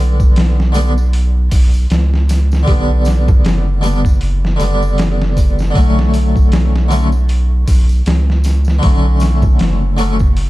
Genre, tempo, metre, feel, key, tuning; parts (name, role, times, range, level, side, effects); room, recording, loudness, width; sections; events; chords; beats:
trip hop; 78 BPM; 4/4; swing 57% on 16ths; A4 = 440 Hz
harpsichord; accompaniment; 0.0-10.2 s; D3 to D4; -19 LUFS; left 1 dB; tremolo, tape echo
round analog bass; bass; 0.0-10.5 s; F#1 to C#2; -13 LUFS; equal
trip hop sampler-style drum kit; drums; 0.2-10.5 s; hi-hat, kick drum, snare drum; -15 LUFS; equal; overdrive, studio reverb
tambourine and congas; percussion; 0.2-10.5 s; -29 LUFS; right 2 dB
small room ambience; dark, warm production; -11 LUFS; side -18 dB against mid
0.0-10.5 A section
0.0 G/B; 5.8 Bm9
0.37 1.14 1.91 | 2.68 3.45 4.22 4.99 | 5.75 6.52 7.29 8.06 | 8.83 9.60 10.37